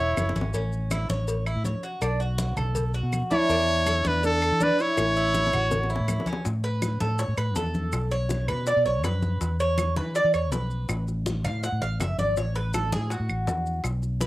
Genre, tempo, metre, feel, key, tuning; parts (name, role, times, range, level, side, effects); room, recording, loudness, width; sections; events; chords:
latin, Cuban son and guajira; 162 BPM; 4/4; straight; A major; A4 = 439 Hz
bright trumpet; melody; 0.0-0.4, 3.3-6.3 s; A4 to C#5; -24 LUFS; equal; cassette tape
nylon-string guitar; second line; 0.0-0.4, 3.3-6.3 s; D4 to E4; -28 LUFS; equal; cassette tape
Cuban tres; arpeggios; 0.0-14.3 s; C#4 to F#5; -29 LUFS; right 1 dB; cassette tape
fingered electric bass; bass; 0.0-14.3 s; E1 to E3; -27 LUFS; equal
congas; percussion; 0.0-14.3 s; -34 LUFS; left 1 dB
claves; percussion; 0.2-14.0 s; -35 LUFS; right 3 dB
cowbell and bongos; percussion; 0.2-14.3 s; -35 LUFS; left 4 dB
maracas; percussion; 0.2-14.3 s; -41 LUFS; left 3 dB
moderate small room reverb, RT60 0.5 s; home recording on cassette; -23 LUFS; side -17 dB against mid
0.0-6.5 A section; 6.5-14.3 B section
drum fill 0.0-0.5, 5.0-6.5; Cuban tres solo 6.5-14.3
0.0 A6; 2.0 Bm7; 3.5 E7sus4; 5.0 A6; 6.5 A5; 7.9 B5; 9.4 E5; 10.9 A5